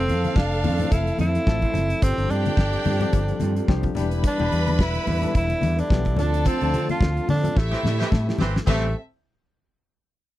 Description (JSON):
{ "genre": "disco", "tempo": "108 BPM", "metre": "4/4", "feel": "swing 56% on 16ths", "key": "A minor", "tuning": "A4 = 441 Hz", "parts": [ { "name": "breathy tenor saxophone", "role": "melody", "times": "0.0-8.9 s", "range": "A3 to F4", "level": "-27 LUFS", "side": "right 1 dB", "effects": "none" }, { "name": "warm studio violin section", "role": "second line", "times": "0.0-8.9 s", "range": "C4 to B5", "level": "-31 LUFS", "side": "right 1 dB", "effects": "none" }, { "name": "barky reed electric piano", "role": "accompaniment", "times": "0.0-8.9 s", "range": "E3 to A4", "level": "-31 LUFS", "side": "left 7 dB", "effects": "overdrive, fast tremolo" }, { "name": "mellow electric guitar", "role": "accompaniment", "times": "0.0-8.9 s", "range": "G3 to D5", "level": "-33 LUFS", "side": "right 6 dB", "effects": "none" }, { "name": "mellow French horn section", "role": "sustained chords", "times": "0.0-8.9 s", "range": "C3 to A4", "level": "-35 LUFS", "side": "equal", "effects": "none" }, { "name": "fingered electric bass", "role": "bass", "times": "0.0-8.9 s", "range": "E1 to D3", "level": "-24 LUFS", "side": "equal", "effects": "none" }, { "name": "damped 70s drum kit", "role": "drums", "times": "0.1-8.8 s", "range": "crash cymbal, hi-hat, kick drum, snare drum", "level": "-22 LUFS", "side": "equal", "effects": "none" }, { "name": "congas", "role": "percussion", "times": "0.2-8.9 s", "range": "none", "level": "-30 LUFS", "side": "left 4 dB", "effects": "none" }, { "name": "warm horn section", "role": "stabs", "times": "7.7-8.9 s", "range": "E3 to G4", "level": "-30 LUFS", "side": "right 3 dB", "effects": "none" } ], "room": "little or no reverb", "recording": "dry, close 1970s-style studio recording", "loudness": "-20 LUFS", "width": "side -15 dB against mid", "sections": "0.0-8.7 A section; 8.7-10.4 B section", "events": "band accent 6.5-8.7; drum fill 7.6-8.7", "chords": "0.0 Fmaj7; 2.0 G7sus4; 4.0 Em7; 6.2 Dm7; 7.6 Am7", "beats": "0.36 0.91 1.47 | 2.02 2.58 3.13 3.68 | 4.24 4.79 5.35 5.90 | 6.45 7.01 7.56 8.12 | 8.67" }